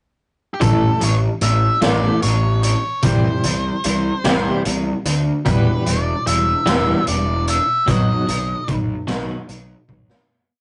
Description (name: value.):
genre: quiet-loud alternative rock.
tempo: 50 BPM (dotted quarters).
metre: 6/8.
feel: straight.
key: unclear.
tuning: A4 = 441 Hz.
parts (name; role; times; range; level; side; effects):
octave-fuzz lead guitar; melody; 0.5-8.8 s; G4 to E5; -24 LUFS; equal; distortion.
twelve-string electric guitar; arpeggios; 0.6-9.8 s; A2 to B3; -25 LUFS; equal; tremolo.
fuzz picked electric bass; bass; 0.6-10.1 s; E1 to D2; -23 LUFS; equal; overdrive.
raw garage drum kit; drums; 0.6-10.3 s; hi-hat, kick drum, snare drum; -23 LUFS; equal; none.
room: moderate booth ambience, RT60 0.2 s.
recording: rough rehearsal-room recording, warm saturation, nothing above 10.3 kHz.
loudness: -18 LUFS.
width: mono.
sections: 0.0-0.6 pickup bar; 0.6-10.3 verse.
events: fade-out 7.9-10.3; drum fill 9.9-10.3.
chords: 0.0 N.C.; 0.6 A5; 3.0 C; 5.5 Em; 7.9 B.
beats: | 0.61 1.82 | 3.03 4.24 | 5.45 6.66 | 7.87 9.08.